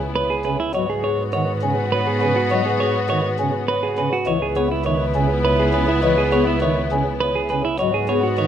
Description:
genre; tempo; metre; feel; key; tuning
classical, minimalist pattern music; 102 BPM; 3/4; straight; C# minor; A4 = 440 Hz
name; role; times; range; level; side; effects
marimba with soft mallets; melody; 0.0-8.5 s; G#4 to G#5; -26 LUFS; left 8 dB; none
warm clarinet; second line; 0.0-8.5 s; B4; -27 LUFS; right 2 dB; none
rich symphonic string section; sustained chords; 0.0-8.5 s; B3 to F#4; -26 LUFS; left 4 dB; none
rich double bass; bass; 0.0-8.5 s; C#2 to G#2; -25 LUFS; right 2 dB; none
clean electric guitar; arpeggios; 0.2-8.5 s; E4 to C#5; -23 LUFS; right 4 dB; none
pipe organ, flutes; accompaniment; 0.4-8.5 s; C#3 to B3; -25 LUFS; right 1 dB; none
room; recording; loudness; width
moderate recital hall reverb, RT60 1.6 s; close, detailed microphones; -17 LUFS; side -9 dB against mid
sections
0.0-8.5 A section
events
none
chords
0.0 C#m7; 0.7 G#m7; 4.3 C#m7; 7.8 G#m7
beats
0.15 | 0.74 1.33 1.92 | 2.51 3.10 3.68 | 4.27 4.86 5.45 | 6.04 6.62 7.21 | 7.80 8.39

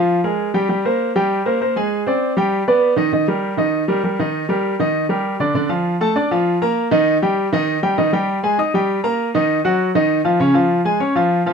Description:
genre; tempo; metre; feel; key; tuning
jazz; 198 BPM; 4/4; straight; unclear; A4 = 439 Hz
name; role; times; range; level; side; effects
clear baby grand piano; solo; 0.0-11.5 s; Db3 to Eb6; -16 LUFS; equal; none
room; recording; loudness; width
wet studio reverb, RT60 0.6 s; dark, warm production; -16 LUFS; side -6 dB against mid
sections
0.0-5.5 A section; 5.5-11.5 B section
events
none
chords
0.0 Bb5; 0.7 Gmadd11; 1.9 Abmaj7#11; 2.5 G; 3.1 Ebmaj7; 5.5 Bbmaj7; 6.8 Eb; 8.0 Ab5; 9.2 Ebm; 9.8 Ebmadd9; 10.4 Db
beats
0.09 0.39 | 0.70 1.00 1.30 1.61 | 1.91 2.21 2.52 2.82 | 3.12 3.43 3.73 4.03 | 4.33 4.64 4.94 5.25 | 5.55 5.85 6.15 6.46 | 6.76 7.06 7.37 7.67 | 7.97 8.27 8.58 8.88 | 9.18 9.48 9.79 10.09 | 10.39 10.70 11.00 11.30

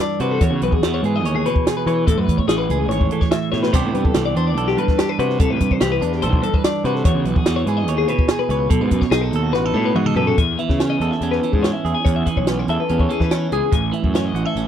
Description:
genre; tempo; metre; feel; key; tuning
math rock and midwest emo; 144 BPM; 4/4; straight; E major; A4 = 440 Hz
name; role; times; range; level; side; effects
clean electric guitar; accompaniment; 0.0-14.7 s; E2 to C#5; -22 LUFS; right 9 dB; none
twelve-string electric guitar; arpeggios; 0.0-14.7 s; F#4 to G#5; -22 LUFS; left 9 dB; none
fuzz picked electric bass; bass; 0.2-14.7 s; G#1 to E3; -21 LUFS; equal; overdrive
compact cocktail drum kit; drums; 0.2-14.7 s; hi-hat, kick drum, snare drum, splash cymbal, toms; -19 LUFS; equal; none
room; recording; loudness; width
little or no reverb; dry, close 1970s-style studio recording; -16 LUFS; side -9 dB against mid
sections
0.0-10.4 A section; 10.4-14.7 B section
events
drum fill 3.5, 9.5-10.4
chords
0.4 Emaj9; 2.1 Amaj9; 3.7 Cmaj9; 7.1 Emaj9; 8.7 B7; 10.4 E6; 13.7 Amaj7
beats
0.00 | 0.41 0.83 1.25 1.66 | 2.08 2.49 2.91 3.32 | 3.74 4.15 4.57 4.98 | 5.40 5.81 6.23 6.64 | 7.06 7.47 7.88 8.30 | 8.71 9.13 9.55 9.96 | 10.38 10.80 11.21 11.63 | 12.05 12.47 12.89 13.31 | 13.73 14.14 14.56

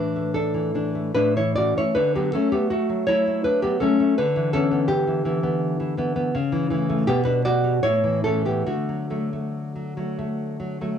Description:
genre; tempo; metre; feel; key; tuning
romantic piece for solo classical guitar; 70-84 BPM; 3/4; rubato; D major; A4 = 440 Hz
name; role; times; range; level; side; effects
nylon-string guitar; solo; 0.0-11.0 s; A2 to D5; -20 LUFS; left 1 dB; cassette tape
room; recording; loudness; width
light reverb; home recording on cassette; -20 LUFS; side -8 dB against mid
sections
0.0-11.0 A section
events
none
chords
0.0 Asus4; 1.1 A; 1.9 D; 4.2 Em7/D; 6.3 A/C#; 7.1 G/B; 7.8 A; 8.7 D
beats
0.36 1.15 | 1.94 2.71 3.45 | 4.18 4.89 5.61 | 6.34 7.07 7.85 | 8.67 9.52 10.36

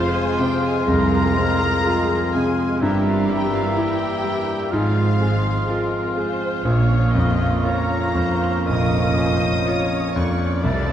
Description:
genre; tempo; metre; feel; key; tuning
classical, romantic movement for piano and orchestra; 62 BPM; 4/4; rubato; unclear; A4 = 440 Hz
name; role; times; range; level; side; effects
clear concert grand piano; melody; 0.0-10.9 s; Bb1 to F4; -22 LUFS; left 1 dB; none
warm symphonic violin section; melody; 0.0-10.9 s; E5 to Eb6; -30 LUFS; left 3 dB; none
small flute group; second line; 0.0-10.9 s; Bb5 to A6; -31 LUFS; left 1 dB; none
warm clarinet; second line; 0.0-10.9 s; E4 to Eb5; -31 LUFS; left 1 dB; none
warm oboe; second line; 0.0-10.9 s; E5 to F5; -29 LUFS; left 1 dB; none
warm symphonic violin section; second line; 0.0-10.9 s; G3 to F4; -33 LUFS; left 2 dB; none
mellow bassoon; accompaniment; 0.0-10.9 s; G3 to Bb3; -31 LUFS; right 3 dB; none
warm symphonic viola section; accompaniment; 0.0-10.9 s; F4 to Eb5; -31 LUFS; right 1 dB; none
mellow trombone section; sustained chords; 0.0-10.9 s; Eb3 to Bb3; -29 LUFS; right 5 dB; none
warm French horn section; sustained chords; 0.0-10.9 s; Bb3 to Bb4; -30 LUFS; left 2 dB; none
warm studio double bass section; bass; 0.9-10.9 s; F1 to C2; -29 LUFS; right 3 dB; none
warm symphonic cello section; bass; 0.9-10.9 s; C2 to C3; -26 LUFS; right 3 dB; none
timpani; percussion; 10.6-10.9 s; C3; -33 LUFS; left 1 dB; none
room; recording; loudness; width
wet concert hall reverb, RT60 2.0 s; dark, warm production; -17 LUFS; side -10 dB against mid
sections
0.0-10.9 A section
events
none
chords
0.0 Fm; 2.8 Edim/G; 4.7 Fm/Ab; 6.7 Bbm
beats
0.87 1.84 | 2.81 3.76 4.72 5.68 | 6.65 7.63 8.68 9.67 | 10.64

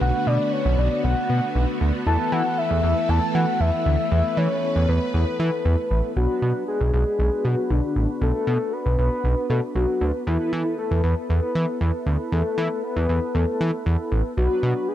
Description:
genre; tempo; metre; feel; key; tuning
pop; 117 BPM; 4/4; straight; B minor; A4 = 440 Hz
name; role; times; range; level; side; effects
soft octave-layered synth lead; melody; 0.0-14.9 s; D4 to A5; -25 LUFS; left 2 dB; chorus, tremolo, tape echo
mellow synth brass; accompaniment; 0.0-14.9 s; B3 to B4; -30 LUFS; equal; chorus
string machine, violas; sustained chords; 0.0-6.1 s; D3 to B4; -28 LUFS; equal; ensemble chorus
fat analog bass; bass; 0.0-14.7 s; A1 to E3; -21 LUFS; equal; none
room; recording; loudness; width
light reverb, digital ambience; dark, warm production; -20 LUFS; side -12 dB against mid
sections
0.0-6.2 A section; 6.2-14.9 B section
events
none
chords
0.0 Bm7; 2.1 Esus4; 6.2 Bm7; 10.3 Esus4; 14.4 Bm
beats
| 0.01 0.53 1.04 1.55 | 2.06 2.58 3.09 3.60 | 4.12 4.63 5.14 5.65 | 6.17 6.68 7.19 7.71 | 8.22 8.73 9.24 9.76 | 10.27 10.78 11.29 11.81 | 12.32 12.83 13.35 13.86 | 14.37 14.88

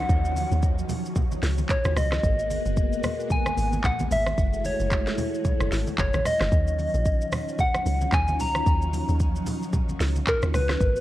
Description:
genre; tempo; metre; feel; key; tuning
amapiano; 112 BPM; 4/4; swing 58% on 16ths; Eb minor; A4 = 439 Hz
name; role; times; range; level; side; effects
soft struck synth lead; melody; 0.0-11.0 s; Bb4 to Bb5; -28 LUFS; left 1 dB; chorus, tremolo, digital delay
ensemble organ-string; sustained chords; 0.0-11.0 s; Bb2 to Gb4; -32 LUFS; equal; phaser, ensemble chorus
deep log drum bass; bass; 0.0-11.0 s; Gb1 to Eb2; -26 LUFS; equal; none
downlifter; sound effects; 0.0-2.2 s; none; -46 LUFS; equal; none
afro-pop drum kit; drums; 0.1-11.0 s; handclaps, hi-hat, kick drum, rim click, shaker, snare drum; -26 LUFS; equal; none
congas; percussion; 0.4-10.8 s; none; -34 LUFS; right 1 dB; none
room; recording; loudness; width
digital ambience; worn, warbling old tape, cassette tape, warbly pitch drift; -22 LUFS; side -15 dB against mid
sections
0.0-11.0 A section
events
none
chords
0.0 Ebm9; 2.2 Abm9; 4.4 Gbm9; 6.5 Ebm9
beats
| 0.09 0.63 1.16 1.70 | 2.23 2.77 3.31 3.84 | 4.38 4.91 5.45 5.99 | 6.52 7.06 7.59 8.13 | 8.66 9.20 9.73 10.27 | 10.81

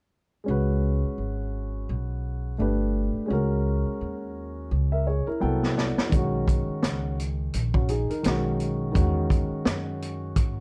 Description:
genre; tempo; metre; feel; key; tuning
hip hop, jazz-hop; 85 BPM; 4/4; swing 57% on 16ths; C# dorian; A4 = 439 Hz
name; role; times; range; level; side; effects
dark grand piano; accompaniment; 0.4-10.6 s; D#3 to G5; -31 LUFS; equal; none
upright bass; bass; 0.5-10.6 s; G1 to G#2; -30 LUFS; equal; none
vintage drum kit; drums; 5.6-10.6 s; hi-hat, kick drum, snare drum; -28 LUFS; equal; none
room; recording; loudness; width
light reverb; dark, warm production; -26 LUFS; mono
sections
0.5-10.6 A section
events
grand piano fill 5.1-6.1; drum fill 5.4-6.1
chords
0.5 C#5; 2.6 Gadd9; 3.3 F#add9/C#; 5.4 Cmaj9; 6.1 Bmaj9; 8.2 B69; 8.9 E69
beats
| 0.48 1.19 1.89 2.60 | 3.30 4.01 4.71 5.42 | 6.13 6.83 7.54 8.24 | 8.95 9.66 10.36

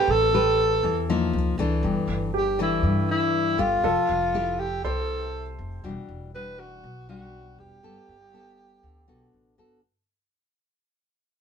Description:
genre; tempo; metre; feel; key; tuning
bossa nova; 120 BPM; 4/4; straight; G major; A4 = 441 Hz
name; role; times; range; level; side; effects
growling alto saxophone; melody; 0.0-9.3 s; E4 to B4; -24 LUFS; right 1 dB; none
clear baby grand piano; accompaniment; 0.0-5.8 s; G4 to C5; -33 LUFS; right 2 dB; none
nylon-string guitar; accompaniment; 0.0-9.8 s; G2 to B4; -28 LUFS; left 4 dB; none
upright bass; bass; 0.1-9.8 s; E1 to G2; -29 LUFS; equal; none
room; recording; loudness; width
moderate studio reverb, RT60 0.6 s; band playing live in one room; -21 LUFS; side -7 dB against mid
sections
0.0-9.8 A section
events
fade-out 0.0-9.8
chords
0.0 Am9; 1.3 C#69; 1.8 Fmaj13/G (rootless); 3.8 Fmaj9; 5.8 Em9; 7.8 Gmaj9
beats
0.34 0.84 1.34 | 1.84 2.34 2.84 3.34 | 3.84 4.34 4.84 5.34 | 5.84 6.34 6.83 7.33 | 7.83 8.34 8.83 9.33

